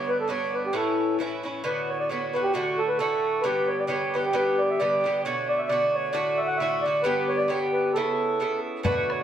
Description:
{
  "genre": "celtic folk, Celtic polka",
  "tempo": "133 BPM",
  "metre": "2/4",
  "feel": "swing 56% on 8ths",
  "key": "unclear",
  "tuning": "A4 = 440 Hz",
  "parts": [
    { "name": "mellow accordion", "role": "melody", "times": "0.0-9.2 s", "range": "F#4 to F#5", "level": "-25 LUFS", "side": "right 1 dB", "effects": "none" },
    { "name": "Irish bouzouki", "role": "accompaniment", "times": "0.0-9.2 s", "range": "G2 to A4", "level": "-27 LUFS", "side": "equal", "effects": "none" },
    { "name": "bodhran", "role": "percussion", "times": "8.8-9.2 s", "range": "none", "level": "-29 LUFS", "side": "left 1 dB", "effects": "none" }
  ],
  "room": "wet studio reverb, RT60 0.9 s",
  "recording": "band playing live in one room",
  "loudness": "-23 LUFS",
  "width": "side -9 dB against mid",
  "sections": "0.0-1.6 A section; 1.6-8.9 B section",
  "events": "none",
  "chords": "0.0 G; 0.7 A; 1.6 Bm7; 2.5 D; 3.4 G; 5.2 Bm7; 6.1 D; 7.0 G; 8.0 Aadd9",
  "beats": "0.29 | 0.74 1.19 | 1.64 2.09 | 2.54 2.99 | 3.44 3.89 | 4.34 4.80 | 5.25 5.70 | 6.15 6.60 | 7.05 7.50 | 7.95 8.40 | 8.85"
}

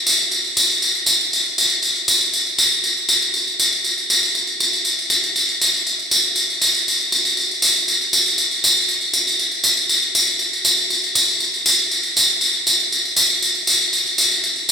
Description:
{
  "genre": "techno",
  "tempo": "119 BPM",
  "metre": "4/4",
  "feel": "straight",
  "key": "none",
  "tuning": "none",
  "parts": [
    { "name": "tambourine", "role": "percussion", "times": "0.1-14.7 s", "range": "none", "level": "-14 LUFS", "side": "equal", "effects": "none" }
  ],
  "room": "wet huge ambient reverb, RT60 4.9 s",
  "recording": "played on a big sound system in a bare room, large studio reverb",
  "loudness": "-14 LUFS",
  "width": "side -6 dB against mid",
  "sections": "0.0-14.7 A section",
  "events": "none",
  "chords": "none",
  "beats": "| 0.32 0.82 1.32 1.83 | 2.33 2.84 3.34 3.84 | 4.35 4.85 5.36 5.86 | 6.37 6.87 7.37 7.88 | 8.38 8.89 9.39 9.89 | 10.40 10.90 11.41 11.91 | 12.42 12.92 13.42 13.93 | 14.43"
}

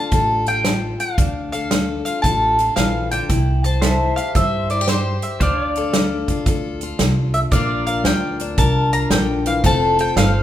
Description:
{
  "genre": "honky-tonk and classic country",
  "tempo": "114 BPM",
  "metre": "4/4",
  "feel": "swing 66% on 8ths",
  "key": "D minor",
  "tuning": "A4 = 439 Hz",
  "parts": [
    { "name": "mandolin", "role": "melody", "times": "0.0-10.4 s", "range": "C5 to Bb5", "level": "-21 LUFS", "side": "equal", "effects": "none" },
    { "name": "picked steel-string acoustic guitar", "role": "accompaniment", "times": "0.0-10.4 s", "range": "A2 to C5", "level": "-24 LUFS", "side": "left 5 dB", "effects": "none" },
    { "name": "pedal steel guitar", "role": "sustained chords", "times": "0.0-10.4 s", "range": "C5 to F5", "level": "-29 LUFS", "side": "equal", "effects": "none" },
    { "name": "upright bass", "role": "bass", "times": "0.1-10.4 s", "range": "F1 to G2", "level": "-22 LUFS", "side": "right 1 dB", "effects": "none" },
    { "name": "natural country drum kit", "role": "drums", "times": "0.1-10.3 s", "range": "hi-hat, kick drum, snare drum", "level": "-20 LUFS", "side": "right 1 dB", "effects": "none" }
  ],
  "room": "moderate recital hall reverb, RT60 1.7 s",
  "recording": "minimal, uncompressed stereo recording",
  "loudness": "-16 LUFS",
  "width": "side -12 dB against mid",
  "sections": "0.0-7.5 A section; 7.5-10.4 B section",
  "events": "none",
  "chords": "0.0 Dm; 3.3 C; 5.4 Dm; 7.5 Bb; 9.6 F",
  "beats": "0.12 0.65 | 1.18 1.71 2.24 2.77 | 3.29 3.82 4.35 4.88 | 5.41 5.94 6.47 7.00 | 7.52 8.05 8.58 9.11 | 9.64 10.17"
}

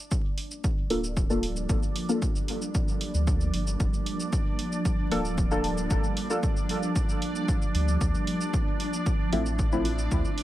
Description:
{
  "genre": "dub techno",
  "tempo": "114 BPM",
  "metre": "4/4",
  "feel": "straight",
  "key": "G minor",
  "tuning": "A4 = 442 Hz",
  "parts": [
    { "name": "granular cloud pad", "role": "sustained chords", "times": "0.8-10.4 s", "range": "F3 to D4", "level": "-32 LUFS", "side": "right 1 dB", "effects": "built-in reverb, sidechain pumping" },
    { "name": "bubbling stepped-filter texture", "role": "texture", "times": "0.0-10.4 s", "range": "D4 to D5", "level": "-38 LUFS", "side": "right 2 dB", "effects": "chorus, built-in reverb, sidechain pumping" },
    { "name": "electronic kick drum", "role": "drums", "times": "0.1-10.2 s", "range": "none", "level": "-27 LUFS", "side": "equal", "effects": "small room reverb" },
    { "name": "electronic shaker and hi-hat", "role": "drums", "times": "0.1-10.4 s", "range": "none", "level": "-38 LUFS", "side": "right 2 dB", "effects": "small room reverb" },
    { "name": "deep mellow chord stab", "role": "stabs", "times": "0.9-9.9 s", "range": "F3 to A4", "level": "-31 LUFS", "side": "left 1 dB", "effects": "chorus, phaser, dub echo" },
    { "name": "pure sine sub bass", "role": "bass", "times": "0.9-10.2 s", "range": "D1 to D2", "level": "-29 LUFS", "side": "equal", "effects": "sidechain pumping" }
  ],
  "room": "little or no reverb",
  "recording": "vinyl crackle",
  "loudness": "-25 LUFS",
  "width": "side -14 dB against mid",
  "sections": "0.0-10.4 A section",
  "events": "none",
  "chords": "0.0 Gm7; 8.0 Dm7",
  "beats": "0.12 0.64 1.17 | 1.69 2.22 2.75 3.27 | 3.80 4.33 4.85 5.38 | 5.91 6.43 6.96 7.48 | 8.01 8.54 9.06 9.59 | 10.12"
}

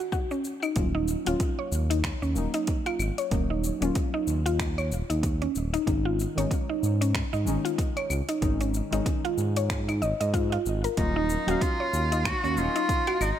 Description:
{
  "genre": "organic downtempo",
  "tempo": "94 BPM",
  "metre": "4/4",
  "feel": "swing 58% on 16ths",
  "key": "Eb minor",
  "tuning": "A4 = 438 Hz",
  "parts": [
    { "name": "deep mellow chord stab", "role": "accompaniment", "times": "0.0-13.4 s", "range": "Eb3 to F5", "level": "-33 LUFS", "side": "left 2 dB", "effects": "chorus, sidechain pumping, tape echo" },
    { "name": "mallet-like synth pluck", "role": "arpeggios", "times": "0.0-13.4 s", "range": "Db4 to Eb5", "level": "-30 LUFS", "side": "equal", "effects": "chorus, tape echo" },
    { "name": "deep house drum kit", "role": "drums", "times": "0.1-13.4 s", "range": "cabasa, claves, finger snaps, hi-hat", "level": "-35 LUFS", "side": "left 1 dB", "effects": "overdrive, studio reverb" },
    { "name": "electronic kick drum", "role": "drums", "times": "0.1-13.0 s", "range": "none", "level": "-29 LUFS", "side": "equal", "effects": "overdrive, studio reverb" },
    { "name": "smooth synth bass", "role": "bass", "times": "0.8-13.3 s", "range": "Eb1 to Ab2", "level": "-28 LUFS", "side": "equal", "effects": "none" },
    { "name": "rich cello", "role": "melody", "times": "11.0-13.4 s", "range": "Eb4 to Gb4", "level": "-27 LUFS", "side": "equal", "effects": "tape echo" }
  ],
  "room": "light reverb",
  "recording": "none",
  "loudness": "-24 LUFS",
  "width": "side -10 dB against mid",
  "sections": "0.8-13.4 A section",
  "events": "none",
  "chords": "0.0 Absus4; 0.8 Ebm7; 5.9 Absus4; 11.0 Ebm7",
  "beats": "0.12 | 0.76 1.40 2.04 2.68 | 3.31 3.95 4.59 5.23 | 5.87 6.51 7.14 7.78 | 8.42 9.06 9.70 10.34 | 10.97 11.61 12.25 12.89"
}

